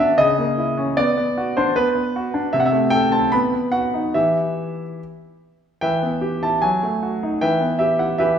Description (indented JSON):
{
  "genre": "classical-period piano sonatina",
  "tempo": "76 BPM",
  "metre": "2/4",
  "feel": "rubato",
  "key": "E minor",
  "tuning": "A4 = 441 Hz",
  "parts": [
    { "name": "clear concert grand piano", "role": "solo", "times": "0.0-8.4 s", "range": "C3 to B5", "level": "-17 LUFS", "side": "equal", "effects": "none" }
  ],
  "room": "wet recital hall reverb, RT60 1.5 s",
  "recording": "heard from further back in the room",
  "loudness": "-17 LUFS",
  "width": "side -8 dB against mid",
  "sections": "0.0-5.8 A section; 5.8-8.4 A section",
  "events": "none",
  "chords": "0.2 A#dim/C#; 1.0 Bm; 2.5 Am/C; 3.3 B; 4.1 Em; 6.6 D#dim/F#; 7.4 Em"
}